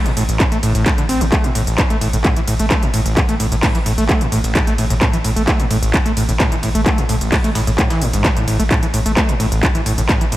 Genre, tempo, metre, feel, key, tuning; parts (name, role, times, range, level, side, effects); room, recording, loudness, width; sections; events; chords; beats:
driving peak-time techno; 130 BPM; 4/4; straight; A4 = 438 Hz
overdriven acid bass; riff; 0.0-10.4 s; A1 to C4; -19 LUFS; equal; distortion, lush chorus, cassette tape, sidechain pumping, analog delay
warm sub bass; bass; 0.1-10.4 s; A1; -21 LUFS; equal; sidechain pumping, low-pass filter
breakbeat sampler-style drum kit; drums; 0.1-10.4 s; hi-hat, ride cymbal, snare drum; -33 LUFS; right 1 dB
techno drum kit; drums; 0.1-10.4 s; handclaps, hi-hat, ride cymbal; -21 LUFS; equal; overdrive
electronic kick drum; drums; 0.4-10.2 s; -17 LUFS; equal; overdrive
light reverb; -14 LUFS; side -15 dB against mid
0.0-10.4 A section
0.0 A5
0.40 0.86 | 1.32 1.78 2.25 2.71 | 3.17 3.63 4.09 4.55 | 5.01 5.48 5.94 6.40 | 6.86 7.32 7.78 8.25 | 8.71 9.17 9.63 10.09